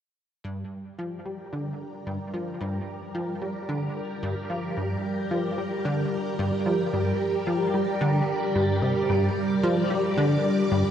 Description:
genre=ambient, sequencer-driven space music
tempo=111 BPM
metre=4/4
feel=straight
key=G minor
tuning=A4 = 440 Hz
part: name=phased string machine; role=sustained chords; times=0.4-10.9 s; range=G3 to D5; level=-27 LUFS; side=equal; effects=ensemble chorus, phaser
part: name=plucky analog bass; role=riff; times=0.4-10.8 s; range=G2 to G3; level=-27 LUFS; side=equal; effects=ensemble chorus, analog delay
room=wet cathedral reverb, RT60 5.4 s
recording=in a vast, echoing space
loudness=-24 LUFS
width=side -9 dB against mid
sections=0.4-10.9 A section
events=fade-in on analog synth bass 0.4-10.9; fade-in on string machine 0.4-10.9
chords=0.4 Gm

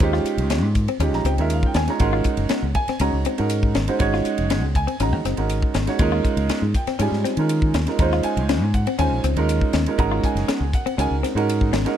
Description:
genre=electric jazz fusion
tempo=120 BPM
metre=4/4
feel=straight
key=unclear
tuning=A4 = 440 Hz
part: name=warm grand piano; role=accompaniment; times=0.0-12.0 s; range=G3 to C6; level=-23 LUFS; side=right 5 dB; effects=none
part: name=fingered electric bass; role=bass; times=0.0-11.8 s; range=Gb1 to Eb3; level=-22 LUFS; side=left 1 dB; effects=none
part: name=crisp fusion drum kit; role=drums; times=0.0-12.0 s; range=hi-hat, kick drum, ride cymbal, snare drum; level=-25 LUFS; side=left 1 dB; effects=none
part: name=direct-recorded clean electric guitar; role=stabs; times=0.1-11.9 s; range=C4 to F4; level=-28 LUFS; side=left 8 dB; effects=wide subtle chorus
room=little or no reverb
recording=dark, warm production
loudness=-18 LUFS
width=side -10 dB against mid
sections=0.0-12.0 A section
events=none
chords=0.0 Eb9sus4; 2.0 Ab9sus4; 6.0 Eb9sus4; 10.0 Ab9sus4

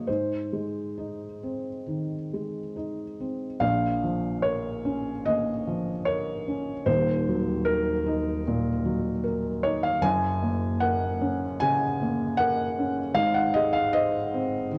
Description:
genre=neoclassical minimalist piano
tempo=66-79 BPM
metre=4/4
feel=rubato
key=Bb minor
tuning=A4 = 441 Hz
part: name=felt-muted upright piano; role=solo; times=0.0-14.8 s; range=Eb1 to Ab5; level=-27 LUFS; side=equal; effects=none
room=moderate recital hall reverb, RT60 1.5 s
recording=worn, warbling old tape, cassette tape, warbly pitch drift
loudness=-27 LUFS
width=mono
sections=0.0-3.6 A section; 3.6-14.8 A section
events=none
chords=0.1 Ab; 3.6 Bbm; 6.9 Ebm; 10.0 Gb; 13.1 Ab

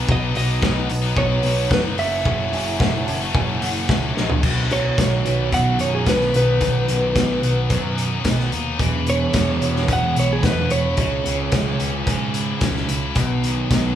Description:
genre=indie rock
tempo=110 BPM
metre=4/4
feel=straight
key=unclear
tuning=A4 = 440 Hz
part: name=warm analog pad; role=sustained chords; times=0.0-4.4, 13.2-14.0 s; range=F#3 to A5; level=-33 LUFS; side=left 1 dB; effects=chorus
part: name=crunchy overdriven guitar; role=riff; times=0.0-14.0 s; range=F#2 to F#4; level=-26 LUFS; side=right 3 dB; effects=none
part: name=high-gain distorted guitar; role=riff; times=0.0-14.0 s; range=F#2 to E4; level=-26 LUFS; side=left 5 dB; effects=distortion
part: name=fuzz picked electric bass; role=bass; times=0.0-13.9 s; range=E1 to G#2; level=-23 LUFS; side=equal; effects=overdrive
part: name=clean electric guitar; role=melody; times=0.1-12.3 s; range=G#4 to F#5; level=-23 LUFS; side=right 1 dB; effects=warbly pitch drift
part: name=loose indie drum kit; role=drums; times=0.1-13.8 s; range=crash cymbal, hi-hat, kick drum, snare drum, toms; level=-22 LUFS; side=equal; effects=none
part: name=synth chime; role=second line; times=2.5-4.4 s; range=E5 to A5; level=-32 LUFS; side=right 2 dB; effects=ensemble chorus
room=moderate large studio reverb, RT60 1.4 s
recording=band playing live in one room, small room ambience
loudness=-17 LUFS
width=side -10 dB against mid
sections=0.0-4.4 A section; 4.4-14.0 B section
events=drum fill 4.2; clean electric guitar solo 4.4-14.0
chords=0.0 B7; 2.0 F#m7; 4.4 B; 8.8 E; 11.0 C#m; 13.2 B

